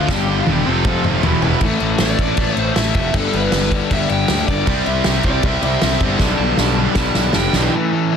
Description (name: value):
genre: punk rock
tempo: 157 BPM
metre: 4/4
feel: straight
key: unclear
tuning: A4 = 440 Hz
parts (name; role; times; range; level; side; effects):
- raw garage guitar; melody; 0.0-8.2 s; E3 to A5; -23 LUFS; right 2 dB; overdrive, tape echo
- distorted electric guitar; riff; 0.0-8.2 s; E2 to C4; -21 LUFS; left 10 dB; distortion
- tight distorted guitar; riff; 0.0-1.6, 4.7-7.7 s; G2 to G4; -23 LUFS; right 18 dB; distortion
- tight distorted guitar; riff; 0.0-7.7 s; E2 to C4; -25 LUFS; right 1 dB; distortion
- fuzz picked electric bass; bass; 0.0-7.7 s; E1 to D2; -21 LUFS; equal; overdrive
- loose indie drum kit; drums; 0.1-7.6 s; crash cymbal, kick drum, snare drum, toms; -20 LUFS; equal; none
room: little or no reverb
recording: dense, heavily limited modern master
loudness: -14 LUFS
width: side -7 dB against mid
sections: 0.0-1.6 A section; 1.6-7.7 B section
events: drum fill 0.1-1.6, 6.2-7.7; overdriven electric guitar solo 1.6-7.7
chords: 0.1 G; 0.7 F; 1.2 Em; 1.6 A5; 3.1 G; 4.7 C; 6.2 G/B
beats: | 0.09 0.47 0.85 1.23 | 1.62 2.00 2.38 2.76 | 3.15 3.53 3.91 4.29 | 4.67 5.05 5.44 5.82 | 6.20 6.58 6.96 7.34 | 7.72 8.11